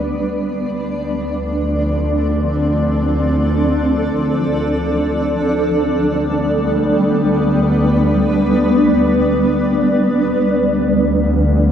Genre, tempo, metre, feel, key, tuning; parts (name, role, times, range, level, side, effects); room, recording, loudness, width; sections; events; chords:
ambient; free time; D dorian; A4 = 441 Hz
granular cloud pad; sustained chords; 0.0-11.7 s; F3 to D5; -15 LUFS; equal; built-in reverb
dark studio double bass section; bass; 0.0-11.7 s; D2; -19 LUFS; equal
wet cathedral reverb, RT60 6.3 s; in a vast, echoing space; -14 LUFS; side -9 dB against mid
0.0-10.3 A section; 10.3-11.7 B section
fade-in on ambient pad 0.0-10.3; filter sweep on ambient pad 10.3-11.7
0.0 G/D; 0.7 Dm7; 5.5 G/D; 10.3 Dm7